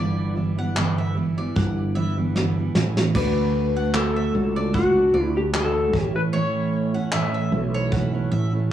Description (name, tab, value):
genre	acoustic pop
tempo	76 BPM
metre	4/4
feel	swing 55% on 16ths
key	D major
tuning	A4 = 440 Hz
part	clean lap steel guitar	melody	0.0-8.3 s	F#4 to E5	-24 LUFS	left 3 dB	cassette tape
part	fingerpicked steel-string acoustic guitar	accompaniment	0.0-8.7 s	G2 to F#4	-25 LUFS	right 5 dB	none
part	bowl-back mandolin	arpeggios	0.0-8.5 s	C#5 to F#5	-35 LUFS	right 1 dB	analog delay
part	fretless electric bass	bass	0.0-8.7 s	G1 to D2	-25 LUFS	equal	transformer saturation
part	soft brush drum kit	drums	0.8-8.1 s	crash cymbal, handclaps, kick drum, snare drum	-26 LUFS	equal	cassette tape
room	light reverb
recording	home recording on cassette, small room reverb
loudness	-20 LUFS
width	side -11 dB against mid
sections	0.0-3.2 A section; 3.2-8.7 B section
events	drum fill 2.4-3.2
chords	0.0 G6; 3.2 D; 5.9 A